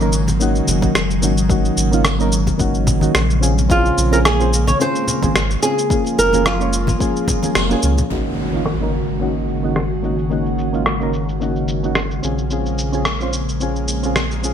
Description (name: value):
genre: sunset chillout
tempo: 109 BPM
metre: 4/4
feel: swing 55% on 16ths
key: unclear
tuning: A4 = 440 Hz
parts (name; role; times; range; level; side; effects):
- soft electric-piano-like synth keys; accompaniment; 0.0-14.5 s; Bb3 to Db5; -22 LUFS; moving between left 4 dB and right 4 dB; chorus, auto-pan, vintage 12-bit sampler grit, low-pass filter, ping-pong delay
- airy breathy pad; sustained chords; 0.0-14.5 s; Db3 to Gb4; -23 LUFS; left 1 dB; chorus
- warm sub bass; bass; 0.0-14.5 s; Gb1 to Db2; -21 LUFS; equal; none
- electronic shaker and rim click; drums; 0.0-14.5 s; none; -21 LUFS; equal; overdrive, low-pass filter on perc, low-pass filter on snare
- congas; percussion; 0.3-8.1 s; none; -26 LUFS; left 2 dB; none
- electronic kick drum; drums; 0.8-7.4 s; none; -21 LUFS; equal; overdrive
- flamenco guitar; melody; 3.7-7.8 s; F4 to Db5; -19 LUFS; right 1 dB; ping-pong delay
- impact; sound effects; 8.1-10.3 s; none; -29 LUFS; equal; none
room: moderate plate reverb, RT60 1.4 s, digital ambience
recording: bright 1980s-style digital production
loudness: -15 LUFS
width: side -8 dB against mid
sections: 0.0-8.1 A section; 8.1-14.5 B section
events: kick drops out 7.6-8.1; band accent 7.6; impact 8.1-10.3; filter sweep on drum 8.1-14.5; filter sweep on synth keys 8.1-14.5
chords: 0.0 Ab7sus4; 3.4 Bbm9; 5.9 Gbmaj9; 8.1 Ab7sus4; 12.2 Bbm9